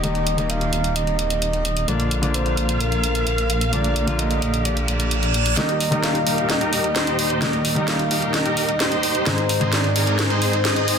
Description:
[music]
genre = EDM, festival progressive house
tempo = 130 BPM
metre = 4/4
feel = straight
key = Eb major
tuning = A4 = 435 Hz
[part]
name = breathy flute-like synth lead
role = melody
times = 0.0-11.0 s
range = Bb4 to F5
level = -25 LUFS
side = equal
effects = wide subtle chorus, ping-pong delay
[part]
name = warm baby grand piano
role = accompaniment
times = 0.0-11.0 s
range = Ab2 to F4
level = -25 LUFS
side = left 2 dB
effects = none
[part]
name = dark studio string section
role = sustained chords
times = 0.0-11.0 s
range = Eb2 to F5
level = -28 LUFS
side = right 2 dB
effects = low-pass filter
[part]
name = detuned saw bass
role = bass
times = 0.0-5.5 s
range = Eb1 to Bb1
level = -23 LUFS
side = equal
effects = none
[part]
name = house drum kit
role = drums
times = 0.0-11.0 s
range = hi-hat, snare drum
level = -25 LUFS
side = equal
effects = high-pass filter on hats, high-pass filter on snare, high-pass filter on room
[part]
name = reverse cymbal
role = sound effects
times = 4.8-5.6 s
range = none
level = -26 LUFS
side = right 7 dB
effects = none
[part]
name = big supersaw lead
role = riff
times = 5.6-11.0 s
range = Eb4 to Eb5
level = -23 LUFS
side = equal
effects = low-pass filter
[sound]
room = light reverb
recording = dense, heavily limited modern master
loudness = -18 LUFS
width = side -7 dB against mid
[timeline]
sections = 0.0-5.6 A section; 5.6-11.0 B section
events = reverse cymbal 4.8-5.6; build-up 5.6-11.0; drum fill 5.6-11.0; filter sweep on supersaw synth 5.6-11.0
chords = 0.0 Eb; 1.9 Bb; 5.6 Eb; 9.3 Ab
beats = | 0.03 0.50 0.96 1.42 | 1.88 2.34 2.80 3.27 | 3.73 4.19 4.65 5.11 | 5.57 6.03 6.50 6.96 | 7.42 7.88 8.34 8.80 | 9.27 9.73 10.19 10.65

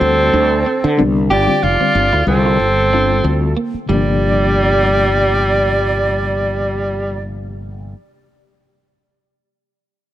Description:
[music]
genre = jazz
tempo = 93 BPM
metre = 4/4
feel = swing 55% on 16ths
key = G minor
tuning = A4 = 441 Hz
[part]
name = clear tenor saxophone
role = melody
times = 0.0-7.2 s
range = G3 to G4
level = -16 LUFS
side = equal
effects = slapback echo
[part]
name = bright reedy silver concert flute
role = second line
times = 0.0-7.2 s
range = A4 to D5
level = -20 LUFS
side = right 4 dB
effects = slapback echo
[part]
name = mellow reed electric piano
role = accompaniment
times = 0.0-8.0 s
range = C3 to F#4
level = -22 LUFS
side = left 4 dB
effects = fast tremolo
[part]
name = clean electric guitar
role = stabs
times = 0.0-4.1 s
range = G3 to F4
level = -26 LUFS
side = right 4 dB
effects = wide subtle chorus
[part]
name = fretless electric bass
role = bass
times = 0.0-7.9 s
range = F1 to D3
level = -18 LUFS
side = equal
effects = wide subtle chorus
[sound]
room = light reverb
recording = none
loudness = -13 LUFS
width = side -13 dB against mid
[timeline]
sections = 0.0-3.9 A section; 3.9-6.5 B section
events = none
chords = 0.0 D7sus4; 1.3 G9sus4; 3.9 Gm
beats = 0.01 0.66 | 1.30 1.95 2.59 3.24 | 3.88 4.53 5.17 5.82

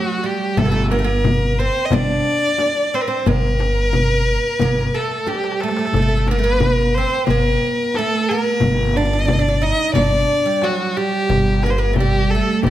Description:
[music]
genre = Arabic maqam ensemble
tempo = 90 BPM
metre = 4/4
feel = straight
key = G maqam suznak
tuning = A4 = 440 Hz
[part]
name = warm violin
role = melody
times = 0.0-12.7 s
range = F#4 to Eb5+30c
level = -19 LUFS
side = left 1 dB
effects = none
[part]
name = oud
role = second line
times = 0.0-12.7 s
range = F#3 to Eb4+20c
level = -23 LUFS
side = right 5 dB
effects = none
[part]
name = darbuka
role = percussion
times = 0.1-12.7 s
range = none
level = -24 LUFS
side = left 1 dB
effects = none
[part]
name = upright bass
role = bass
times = 0.6-12.7 s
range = G1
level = -20 LUFS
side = equal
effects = none
[part]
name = frame drum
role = percussion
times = 0.6-12.7 s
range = none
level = -24 LUFS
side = left 4 dB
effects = none
[sound]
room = wet recital hall reverb, RT60 1.7 s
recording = none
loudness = -15 LUFS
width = side -13 dB against mid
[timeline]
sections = 0.0-12.7 A section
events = drum fill 5.3-5.9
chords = none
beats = | 0.57 1.24 1.91 2.58 | 3.25 3.92 4.59 5.26 | 5.93 6.60 7.27 7.94 | 8.61 9.28 9.95 10.62 | 11.29 11.96 12.63

